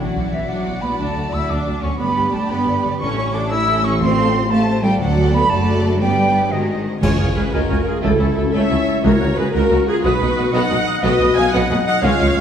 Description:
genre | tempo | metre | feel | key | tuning
cinematic, heroic adventure film score | 120 BPM (dotted quarters) | 6/8 | straight | unclear | A4 = 439 Hz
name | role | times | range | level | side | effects
warm symphonic violin section | melody | 0.0-12.4 s | E4 to E6 | -30 LUFS | left 1 dB | none
rich symphonic violin section | second line | 0.0-12.4 s | Ab3 to F5 | -27 LUFS | left 2 dB | none
silver concert flute | second line | 0.0-12.4 s | D#5 to Gb6 | -23 LUFS | right 2 dB | none
clear symphonic viola section | accompaniment | 0.0-12.4 s | E3 to Ab5 | -24 LUFS | right 1 dB | none
concert harp | arpeggios | 0.0-12.4 s | G2 to D6 | -25 LUFS | left 5 dB | none
rich studio double bass section | bass | 0.0-12.4 s | F#1 to D2 | -22 LUFS | right 3 dB | none
rich symphonic cello section | bass | 0.0-12.4 s | Cb3 to E4 | -24 LUFS | right 2 dB | none
timpani | percussion | 4.0-4.5, 7.0-9.5 s | A2 to Db3 | -25 LUFS | equal | none
clear oboe | second line | 7.0-12.4 s | Ab5 to Eb6 | -31 LUFS | right 3 dB | none
warm clarinet | second line | 7.0-12.4 s | E4 to F5 | -26 LUFS | left 1 dB | none
mellow trumpet section | stabs | 7.0-12.4 s | Ab4 to Ab5 | -25 LUFS | equal | none
clear tuba | bass | 7.0-12.4 s | Cb2 to Db2 | -24 LUFS | right 2 dB | none
clash cymbals and concert bass drum | percussion | 7.0-7.7 s | none | -27 LUFS | equal | none
dark French horn section | sustained chords | 7.5-12.4 s | Eb4 to Ab4 | -23 LUFS | left 5 dB | none
room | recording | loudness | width
wet scoring stage reverb, RT60 1.8 s | small room ambience | -15 LUFS | side -8 dB against mid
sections
0.0-7.0 A section; 7.0-12.4 B section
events
band accent 7.0-7.4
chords
0.0 Bm; 1.0 D; 2.0 G; 3.0 A; 4.0 F/A; 5.0 D; 6.0 G; 6.5 G#7; 7.0 Db; 8.0 A/C#; 9.0 Gb/Db; 10.0 Cb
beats
0.49 | 0.99 1.50 | 2.00 2.50 | 3.00 3.50 | 4.00 4.50 | 5.00 5.50 | 6.00 6.51 | 7.03 7.53 | 8.04 8.54 | 9.04 9.54 | 10.04 10.54 | 11.04 11.54 | 12.04

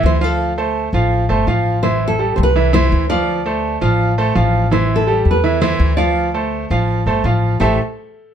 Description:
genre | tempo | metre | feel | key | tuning
latin, Cuban son and guajira | 166 BPM | 4/4 | straight | A minor | A4 = 437 Hz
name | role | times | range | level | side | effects
clear baby grand piano | arpeggios | 0.0-7.8 s | E3 to F5 | -17 LUFS | right 3 dB | none
upright bass | bass | 0.0-7.8 s | G1 to E2 | -18 LUFS | left 1 dB | none
nylon-string guitar | melody | 0.1-7.8 s | A4 to D5 | -20 LUFS | equal | slapback echo
room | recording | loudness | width
light reverb | none | -14 LUFS | side -8 dB against mid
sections
0.0-1.8 A section; 1.8-7.6 B section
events
none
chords
0.4 Dm7; 1.8 Am7; 3.3 Dm7; 4.7 Am7; 6.2 Dm7; 7.6 Am7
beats
0.03 | 0.39 0.75 1.11 1.47 | 1.83 2.19 2.55 2.91 | 3.27 3.63 4.00 4.36 | 4.72 5.08 5.44 5.80 | 6.16 6.52 6.88 7.24 | 7.60

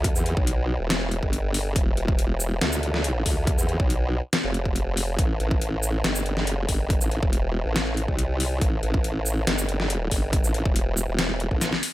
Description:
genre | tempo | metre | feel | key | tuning
heavy wobble dubstep | 140 BPM | 4/4 | half-time | unclear | A4 = 439 Hz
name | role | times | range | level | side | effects
formant-sweep wobble bass | bass | 0.0-11.7 s | E1 to E2 | -25 LUFS | equal | chorus, overdrive
dubstep drum kit | drums | 0.0-11.9 s | hi-hat, shaker, snare drum | -26 LUFS | left 1 dB | overdrive
electronic kick drum | drums | 0.0-11.6 s | none | -24 LUFS | equal | overdrive
room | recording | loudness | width
little or no reverb | none | -22 LUFS | side -16 dB against mid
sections
0.0-11.9 A section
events
drum fill 11.6-11.9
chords
none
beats
| 0.04 0.47 0.90 1.33 | 1.76 2.19 2.62 3.04 | 3.47 3.90 4.33 4.76 | 5.19 5.62 6.04 6.47 | 6.90 7.33 7.76 8.19 | 8.62 9.04 9.47 9.90 | 10.33 10.76 11.19 11.62

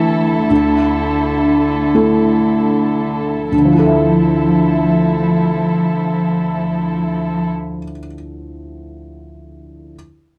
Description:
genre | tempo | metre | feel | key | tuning
neoclassical piano and strings | 37-45 BPM (dotted quarters) | 6/8 | rubato | D minor | A4 = 440 Hz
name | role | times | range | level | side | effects
muted cello | second line | 0.0-7.5 s | D3 to F3 | -21 LUFS | equal | none
felt-muted upright piano | accompaniment | 0.0-10.0 s | D2 to E5 | -18 LUFS | equal | none
muted chamber string section | sustained chords | 0.0-7.5 s | F3 to A4 | -25 LUFS | equal | none
room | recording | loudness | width
light reverb | dry, close 1970s-style studio recording | -15 LUFS | mono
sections
0.0-3.5 A section; 3.5-6.7 B section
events
slowing down 0.0-3.5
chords
0.0 Asus4/D; 3.5 Dmadd9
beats
| 0.49 1.94 | 3.52 5.11

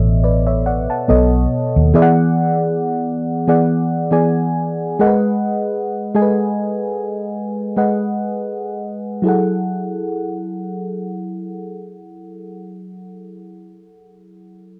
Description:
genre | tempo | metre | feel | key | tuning
R&B | 60-70 BPM | 4/4 | swing 54% on 16ths | F# minor | A4 = 440 Hz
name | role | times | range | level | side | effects
mellow FM electric piano | accompaniment | 0.0-14.8 s | B2 to A5 | -19 LUFS | equal | chorus
vintage muted fingered electric bass | bass | 0.0-1.9 s | A1 to D#2 | -17 LUFS | equal | none
room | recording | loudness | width
little or no reverb | dry, close 1970s-style studio recording | -18 LUFS | mono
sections
0.0-9.2 A section; 9.2-13.3 B section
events
slowing down 1.9-9.2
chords
0.0 Bm9; 1.1 B9; 1.9 E9; 5.0 G#m7; 9.2 F#m9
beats
0.23 1.09 | 1.95 2.81 3.67 4.55 | 5.44 6.36 7.29 8.25 | 9.24 10.25 11.26 12.27

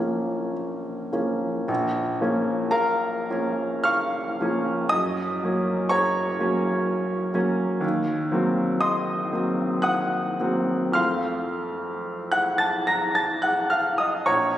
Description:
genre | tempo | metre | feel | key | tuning
classical, romantic nocturne for solo piano | 50-65 BPM | 3/4 | rubato | Bb minor | A4 = 438 Hz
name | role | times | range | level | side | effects
clear baby grand piano | solo | 0.0-14.6 s | Bb1 to Bb6 | -22 LUFS | equal | none
room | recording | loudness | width
wet church reverb, RT60 3.1 s | recorded on a phone in the room, studio reverb, compression | -22 LUFS | side -12 dB against mid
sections
0.0-1.7 A section; 1.7-14.6 A section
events
none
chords
0.0 Bbm; 4.9 Gb; 7.8 Cm7b5/Eb; 11.0 F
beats
0.54 | 1.69 2.74 3.88 | 4.93 5.93 6.88 | 7.83 8.84 9.86 | 10.97 12.07 13.18 | 14.29

